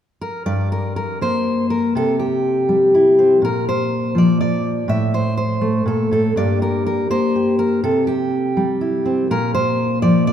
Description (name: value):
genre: folk, solo fingerstyle acoustic guitar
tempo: 123 BPM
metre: 3/4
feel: rubato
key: G dorian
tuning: A4 = 440 Hz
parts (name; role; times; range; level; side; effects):
- fingerpicked steel-string acoustic guitar; solo; 0.2-10.3 s; G2 to E5; -15 LUFS; equal; none
room: moderate concert hall reverb, RT60 2.3 s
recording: minimal, uncompressed stereo recording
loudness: -16 LUFS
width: side -9 dB against mid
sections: 0.5-10.3 A section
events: none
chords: 0.5 Gm; 2.0 C; 3.4 Bb; 4.9 Am; 6.4 Gm; 7.8 C; 9.3 Bb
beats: | 0.47 0.97 1.46 | 1.96 2.45 2.93 | 3.42 3.91 4.39 | 4.88 5.37 5.86 | 6.36 6.86 7.35 | 7.83 8.31 8.80 | 9.29 9.78 10.26